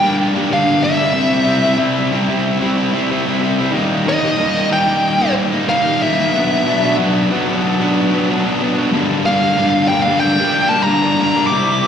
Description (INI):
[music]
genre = rock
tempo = 93 BPM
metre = 4/4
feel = straight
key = G minor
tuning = A4 = 440 Hz
[part]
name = fuzz lead guitar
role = melody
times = 0.0-11.9 s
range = Eb5 to D6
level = -16 LUFS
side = equal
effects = distortion, plate reverb, slapback echo, analog delay
[part]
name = thick fuzz guitar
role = riff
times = 0.0-11.9 s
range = G2 to E4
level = -15 LUFS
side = left 1 dB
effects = distortion, slapback echo
[sound]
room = moderate club reverb, RT60 0.7 s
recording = live gig heard through the venue's PA, recital hall reverb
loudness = -13 LUFS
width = side -8 dB against mid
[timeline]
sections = 0.0-11.9 A section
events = none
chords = 0.0 Gm; 1.1 C; 3.7 Eb; 6.3 Bm; 8.9 Gm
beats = 0.49 | 1.14 1.79 2.44 3.09 | 3.74 4.39 5.03 5.68 | 6.33 6.98 7.62 8.27 | 8.91 9.56 10.21 10.85 | 11.50